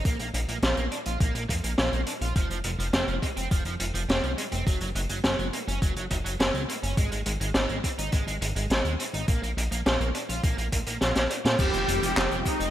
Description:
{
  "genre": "synthwave",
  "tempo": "104 BPM",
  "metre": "4/4",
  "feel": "straight",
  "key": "unclear",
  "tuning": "A4 = 438 Hz",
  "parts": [
    { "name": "chorused synth bass", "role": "bass", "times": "0.0-12.7 s", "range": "F1 to Bb2", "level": "-30 LUFS", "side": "equal", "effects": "tube saturation, sidechain pumping" },
    { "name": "raw garage drum kit", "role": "drums", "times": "0.0-12.7 s", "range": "crash cymbal, handclaps, hi-hat, shaker, snare drum", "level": "-28 LUFS", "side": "equal", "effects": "none" },
    { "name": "biting overdriven guitar", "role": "riff", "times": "0.1-12.7 s", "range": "F3 to F4", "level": "-34 LUFS", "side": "right 3 dB", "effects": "analog chorus, vintage 12-bit sampler grit, digital delay, shimmer reverb" },
    { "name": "electronic kick drum", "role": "drums", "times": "0.1-12.6 s", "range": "none", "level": "-26 LUFS", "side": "equal", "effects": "overdrive" },
    { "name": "soft supersaw", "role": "melody", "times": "11.6-12.7 s", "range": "Eb4 to G4", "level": "-28 LUFS", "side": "equal", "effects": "digital delay, shimmer reverb" },
    { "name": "string machine, violins", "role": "second line", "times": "11.6-12.7 s", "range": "Eb5 to G5", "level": "-35 LUFS", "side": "equal", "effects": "ensemble chorus, cassette tape, digital delay, shimmer reverb" },
    { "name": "warm analog pad", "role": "sustained chords", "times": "11.6-12.7 s", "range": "Ab3 to F4", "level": "-36 LUFS", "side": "equal", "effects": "chorus, sidechain pumping, shimmer reverb" },
    { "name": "downlifter", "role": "sound effects", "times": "11.7-12.7 s", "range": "none", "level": "-35 LUFS", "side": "right 1 dB", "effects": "none" }
  ],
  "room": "moderate plate reverb, RT60 2.3 s",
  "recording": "bright 1980s-style digital production",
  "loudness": "-24 LUFS",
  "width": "side -12 dB against mid",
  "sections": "0.0-11.6 A section; 11.6-12.7 B section",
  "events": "drum fill 11.0-11.6",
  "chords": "0.1 Bb5; 2.4 F5; 4.7 Gb5; 7.0 Ab5; 9.3 Bb5; 11.6 Fm"
}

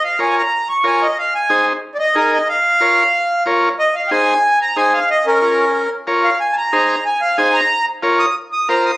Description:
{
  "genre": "latin",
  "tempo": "184 BPM",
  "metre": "4/4",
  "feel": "straight",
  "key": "Bb minor",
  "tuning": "A4 = 438 Hz",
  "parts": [
    { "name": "accordion", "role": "melody", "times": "0.0-9.0 s", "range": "Db4 to Eb6", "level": "-15 LUFS", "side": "equal", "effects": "none" },
    { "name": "overdriven combo organ", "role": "accompaniment", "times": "0.2-8.9 s", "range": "Eb4 to Db5", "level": "-17 LUFS", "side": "equal", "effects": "none" }
  ],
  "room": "light reverb",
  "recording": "recorded on a phone in the room, club reverb",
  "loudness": "-13 LUFS",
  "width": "side -19 dB against mid",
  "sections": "0.0-9.0 A section",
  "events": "accordion solo 0.0-9.0",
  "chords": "0.0 Bbm; 1.2 Ab; 2.5 Bbm; 3.8 Ab; 5.1 Bbm; 6.4 Ab; 7.7 Bbm"
}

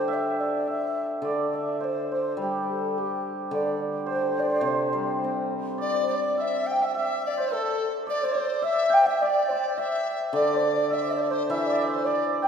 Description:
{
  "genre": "chinese traditional",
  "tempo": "105 BPM",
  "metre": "2/4",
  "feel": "rubato",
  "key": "C gong mode",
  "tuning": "A4 = 440 Hz",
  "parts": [
    { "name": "mellow low xiao", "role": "melody", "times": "0.0-12.5 s", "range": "G4 to G5", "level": "-27 LUFS", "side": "equal", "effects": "none" },
    { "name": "hammered dulcimer", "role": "second line", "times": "0.0-12.5 s", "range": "G4 to G5", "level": "-30 LUFS", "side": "right 4 dB", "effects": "none" },
    { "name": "hammered dulcimer", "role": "accompaniment", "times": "0.0-6.4, 10.3-12.5 s", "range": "C3 to C4", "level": "-30 LUFS", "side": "left 1 dB", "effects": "none" },
    { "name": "mellow large dizi", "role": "second line", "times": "5.8-12.2 s", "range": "A4 to G5", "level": "-28 LUFS", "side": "left 3 dB", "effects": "none" }
  ],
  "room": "wet concert hall reverb, RT60 2.5 s",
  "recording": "heard from further back in the room",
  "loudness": "-23 LUFS",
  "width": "side -7 dB against mid",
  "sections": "0.0-5.8 A section; 5.8-12.5 B section",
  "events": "none",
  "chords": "none"
}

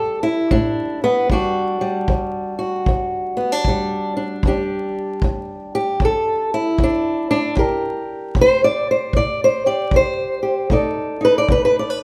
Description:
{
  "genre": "acoustic country blues, solo or duo",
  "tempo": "77 BPM",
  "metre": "4/4",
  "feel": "swing 62% on 8ths",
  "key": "E minor",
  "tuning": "A4 = 440 Hz",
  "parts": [
    { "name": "fingerpicked old ladder-braced acoustic guitar", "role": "melody", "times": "0.0-12.0 s", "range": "E2 to D5", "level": "-20 LUFS", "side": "equal", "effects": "none" },
    { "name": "kick drum", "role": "drums", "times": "0.5-11.7 s", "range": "none", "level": "-23 LUFS", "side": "equal", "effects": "none" }
  ],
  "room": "light reverb",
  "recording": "vinyl crackle",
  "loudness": "-19 LUFS",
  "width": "mono",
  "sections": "0.0-12.0 A section",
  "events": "none",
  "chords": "0.0 A7(no3); 1.3 Em9; 7.6 C5; 10.7 B7#9"
}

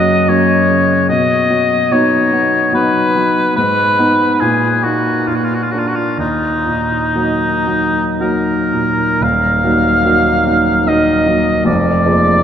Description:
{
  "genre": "classical, romantic duo for oboe and grand piano",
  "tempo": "55-75 BPM",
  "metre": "3/4",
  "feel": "rubato",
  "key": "Eb minor",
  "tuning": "A4 = 440 Hz",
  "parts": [
    { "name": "warm oboe", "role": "melody", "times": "0.0-12.4 s", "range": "Eb4 to F5", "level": "-14 LUFS", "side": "left 1 dB", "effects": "none" },
    { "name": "warm concert grand piano", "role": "accompaniment", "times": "0.0-12.4 s", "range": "Eb1 to Ab4", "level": "-15 LUFS", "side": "equal", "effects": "none" }
  ],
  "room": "wet cathedral reverb, RT60 5.3 s",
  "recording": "in a vast, echoing space",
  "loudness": "-11 LUFS",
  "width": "side -8 dB against mid",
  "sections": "0.0-9.2 A section; 9.2-12.4 B section",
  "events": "none",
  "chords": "0.0 F#; 1.1 B; 3.6 Abm; 4.4 Ebm/Bb; 5.3 Bb; 6.2 Ebm; 11.7 Bb7/F"
}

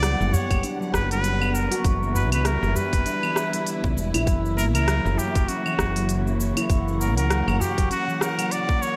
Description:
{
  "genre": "organic downtempo",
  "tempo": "99 BPM",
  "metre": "4/4",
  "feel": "swing 58% on 16ths",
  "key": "F# phrygian dominant",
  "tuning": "A4 = 440 Hz",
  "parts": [
    { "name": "trumpet with straight mute", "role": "melody", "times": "0.0-9.0 s", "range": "F#4 to D5", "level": "-30 LUFS", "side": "equal", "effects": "digital delay" },
    { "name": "dark symphonic string section", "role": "sustained chords", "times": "0.0-9.0 s", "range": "C#3 to F#5", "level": "-34 LUFS", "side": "equal", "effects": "sidechain pumping" },
    { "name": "handpan", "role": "arpeggios", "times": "0.0-8.8 s", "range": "E3 to G4", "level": "-30 LUFS", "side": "equal", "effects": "digital delay" },
    { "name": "woody fretless electric bass", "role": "bass", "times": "0.0-7.9 s", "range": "E1 to C#2", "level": "-27 LUFS", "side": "equal", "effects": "sidechain pumping" },
    { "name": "organic electronic drum kit", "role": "drums", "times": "0.0-9.0 s", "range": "cabasa, claves, hi-hat, rim click", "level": "-32 LUFS", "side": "equal", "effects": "none" },
    { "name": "udu", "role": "percussion", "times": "0.3-7.7 s", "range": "none", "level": "-30 LUFS", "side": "equal", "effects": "none" },
    { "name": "electronic kick drum", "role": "drums", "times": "0.5-8.8 s", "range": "none", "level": "-26 LUFS", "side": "equal", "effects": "none" },
    { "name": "wind-like tuned noise texture", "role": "texture", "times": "6.3-9.0 s", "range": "C#6", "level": "-42 LUFS", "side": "equal", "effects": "none" }
  ],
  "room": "light reverb",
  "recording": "none",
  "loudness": "-23 LUFS",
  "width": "mono",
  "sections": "0.0-9.0 A section",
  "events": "none",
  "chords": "0.0 Gmaj7/F#; 1.8 Em7/F#; 4.3 F#7"
}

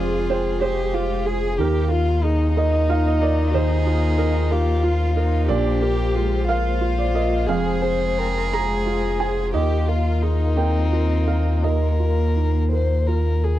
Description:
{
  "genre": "neoclassical piano and strings",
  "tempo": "55-62 BPM (dotted quarters)",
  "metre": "6/8",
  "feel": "rubato",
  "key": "Eb major",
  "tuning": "A4 = 440 Hz",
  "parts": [
    { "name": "dark violin", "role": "melody", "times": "0.0-13.6 s", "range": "Eb4 to C5", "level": "-25 LUFS", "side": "left 5 dB", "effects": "none" },
    { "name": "warm cello", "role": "second line", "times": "0.0-13.3 s", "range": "Bb3 to Ab4", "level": "-30 LUFS", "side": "right 4 dB", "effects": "none" },
    { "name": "felt-muted upright piano", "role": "accompaniment", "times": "0.0-13.6 s", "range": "Eb2 to Bb5", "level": "-25 LUFS", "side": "right 7 dB", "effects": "none" },
    { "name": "warm chamber string section", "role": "sustained chords", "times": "0.0-13.6 s", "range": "Ab3 to C5", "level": "-32 LUFS", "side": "left 3 dB", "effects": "none" },
    { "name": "sub bass with octave", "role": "bass", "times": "0.0-13.6 s", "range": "F1 to Eb2", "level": "-21 LUFS", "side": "left 1 dB", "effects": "none" }
  ],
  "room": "little or no reverb",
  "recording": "dry, close 1970s-style studio recording",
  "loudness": "-18 LUFS",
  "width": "side -13 dB against mid",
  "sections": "0.0-13.6 A section",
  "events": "none",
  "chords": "0.0 Fm; 1.6 Ebsus2; 5.5 Bbadd9; 7.5 Fm; 9.5 Ebsus2"
}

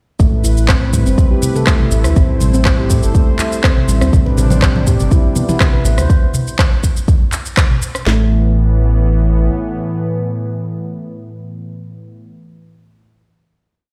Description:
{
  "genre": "afro house",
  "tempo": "122 BPM",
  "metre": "4/4",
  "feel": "straight",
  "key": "A minor",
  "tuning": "A4 = 440 Hz",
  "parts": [
    { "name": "warm analog pad", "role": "sustained chords", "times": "0.2-12.3 s", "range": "A2 to C5", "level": "-25 LUFS", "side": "equal", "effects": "subtle chorus, sidechain pumping" },
    { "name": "handpan", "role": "arpeggios", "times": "0.2-8.3 s", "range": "G3 to C5", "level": "-23 LUFS", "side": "equal", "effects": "sidechain pumping, tape echo" },
    { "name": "round analog bass", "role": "bass", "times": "0.2-9.5 s", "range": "G1 to A2", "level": "-16 LUFS", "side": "equal", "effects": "sidechain pumping" },
    { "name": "afro-pop drum kit", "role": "drums", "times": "0.2-8.2 s", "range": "kick drum, snare drum", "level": "-15 LUFS", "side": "equal", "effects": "studio reverb" },
    { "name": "afro-pop drum kit", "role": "drums", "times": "0.2-8.0 s", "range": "handclaps, rim click, shaker, toms", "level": "-21 LUFS", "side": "equal", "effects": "studio reverb" },
    { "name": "congas", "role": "percussion", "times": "4.1-6.0 s", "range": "none", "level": "-23 LUFS", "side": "equal", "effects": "none" }
  ],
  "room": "digital ambience",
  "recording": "played on a big sound system in a bare room, stone room reverb",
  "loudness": "-14 LUFS",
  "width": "mono",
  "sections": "0.2-8.1 drop; 8.1-12.0 final chord",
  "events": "drop 0.2-8.1",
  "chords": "0.2 Am11; 8.1 Asus2"
}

